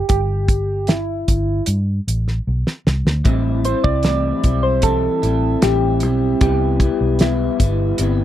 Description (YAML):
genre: indie pop, bedroom pop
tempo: 76 BPM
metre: 4/4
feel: straight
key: A minor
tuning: A4 = 444 Hz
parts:
  - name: soft electric-piano-like synth keys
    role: melody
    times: 0.0-8.0 s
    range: E4 to D5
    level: -21 LUFS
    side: equal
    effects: wide subtle chorus, slapback echo
  - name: vintage muted fingered electric bass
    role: bass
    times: 0.1-8.2 s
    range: G1 to G2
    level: -20 LUFS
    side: equal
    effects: none
  - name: damped 70s drum kit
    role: drums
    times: 0.1-8.2 s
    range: hi-hat, kick drum, snare drum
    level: -17 LUFS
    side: equal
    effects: none
  - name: electric guitar through a small old amp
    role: accompaniment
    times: 3.2-8.2 s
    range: A2 to E4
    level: -20 LUFS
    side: left 2 dB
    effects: wide subtle chorus, vibrato effect
room: little or no reverb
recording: dry, close 1970s-style studio recording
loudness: -15 LUFS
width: side -12 dB against mid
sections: 0.0-8.2 A section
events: drum fill 2.5-3.3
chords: 0.1 N.C.; 3.3 Am7; 6.4 Cmaj7